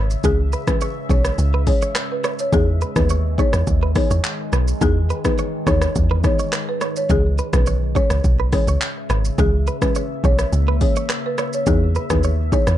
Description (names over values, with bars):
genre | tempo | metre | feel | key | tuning
afrobeats | 105 BPM | 4/4 | straight | C# dorian | A4 = 440 Hz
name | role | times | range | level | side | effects
deep dark ambient pad | sustained chords | 0.0-12.8 s | C#3 to E5 | -30 LUFS | left 1 dB | chorus, built-in reverb
direct-recorded clean electric guitar | riff | 0.0-12.6 s | G#4 to C#5 | -30 LUFS | right 6 dB | analog chorus
deep log drum bass | bass | 0.0-12.8 s | G#1 to E2 | -18 LUFS | equal | none
deep house drum kit | drums | 0.1-12.8 s | handclaps, hi-hat, kick drum, rim click, shaker | -21 LUFS | equal | overdrive, vintage 12-bit sampler grit
soft round pluck | accompaniment | 0.2-12.7 s | E3 to G#4 | -25 LUFS | left 7 dB | chorus
folk marimba with medium mallets | melody | 0.3-12.7 s | G#4 to C#5 | -25 LUFS | right 1 dB | ping-pong delay
room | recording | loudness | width
little or no reverb | dark, warm production | -16 LUFS | side -12 dB against mid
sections
0.0-12.8 A section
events
none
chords
0.0 C#m; 2.5 Emaj7; 7.1 C#m; 11.7 Emaj7